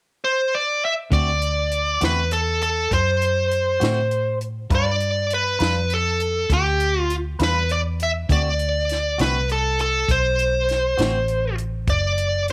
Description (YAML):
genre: slow blues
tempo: 67 BPM (dotted quarters)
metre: 12/8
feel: straight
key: D mixolydian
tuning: A4 = 441 Hz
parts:
  - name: smooth overdriven lead guitar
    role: melody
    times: 0.2-12.4 s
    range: G4 to E5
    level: -23 LUFS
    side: equal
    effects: none
  - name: clean electric guitar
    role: accompaniment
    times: 1.1-11.2 s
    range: D3 to B4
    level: -31 LUFS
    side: equal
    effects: harmonic tremolo
  - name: vintage muted fingered electric bass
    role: bass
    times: 1.1-12.5 s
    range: F#1 to A2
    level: -26 LUFS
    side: equal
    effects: none
  - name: compact cocktail drum kit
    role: drums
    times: 1.1-12.5 s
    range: hi-hat, kick drum, snare drum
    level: -27 LUFS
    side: equal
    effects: none
room: small room ambience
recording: none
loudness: -21 LUFS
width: mono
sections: 0.0-1.1 A section; 1.1-12.5 B section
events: none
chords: 0.0 N.C.; 1.1 D7; 4.7 G7; 8.3 D7